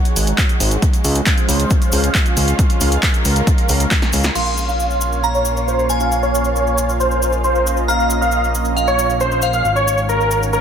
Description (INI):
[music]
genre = uplifting trance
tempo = 136 BPM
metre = 4/4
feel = straight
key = Bb minor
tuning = A4 = 442 Hz
[part]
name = lush unison pad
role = sustained chords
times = 0.0-10.6 s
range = Ab3 to Gb5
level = -22 LUFS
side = right 1 dB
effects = chorus, phaser, sidechain pumping
[part]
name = punchy analog drum machine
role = drums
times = 0.1-4.4 s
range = crash cymbal, handclaps, hi-hat, snare drum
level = -21 LUFS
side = equal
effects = overdrive, sidechain pumping on hats, sidechain pumping on cymbals
[part]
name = cabasa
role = percussion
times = 0.1-10.6 s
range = none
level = -27 LUFS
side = left 3 dB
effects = none
[part]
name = fat analog bass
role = bass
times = 0.2-10.6 s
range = Ab1 to Db2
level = -19 LUFS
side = equal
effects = sidechain pumping
[part]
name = electronic kick drum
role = drums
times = 0.4-4.0 s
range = none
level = -16 LUFS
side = equal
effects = overdrive
[part]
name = supersaw chords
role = melody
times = 4.4-10.6 s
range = Bb4 to F5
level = -18 LUFS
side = equal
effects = sidechain pumping, low-pass filter, dub echo
[part]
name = dark grand piano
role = second line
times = 4.4-10.6 s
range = Bb5 to F6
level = -27 LUFS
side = left 2 dB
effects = none
[part]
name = glassy synth bell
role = second line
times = 4.4-10.6 s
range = F5 to C6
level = -23 LUFS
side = right 1 dB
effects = chorus, phaser, dub echo
[sound]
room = light reverb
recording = dense, heavily limited modern master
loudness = -14 LUFS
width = side -8 dB against mid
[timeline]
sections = 0.0-4.4 A section; 4.4-10.6 B section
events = filter sweep on analog synth pad 0.0-4.4; drum fill 3.9-4.4; filter sweep on supersaw synth 4.4-10.6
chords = 0.0 Ab7sus4; 0.8 Dbmaj7; 4.4 Bbm; 9.6 Ab7sus4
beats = 0.38 | 0.82 1.26 1.71 2.15 | 2.59 3.03 3.47 3.91 | 4.35 4.79 5.24 5.68 | 6.12 6.56 7.00 7.44 | 7.88 8.32 8.77 9.21 | 9.65 10.09 10.53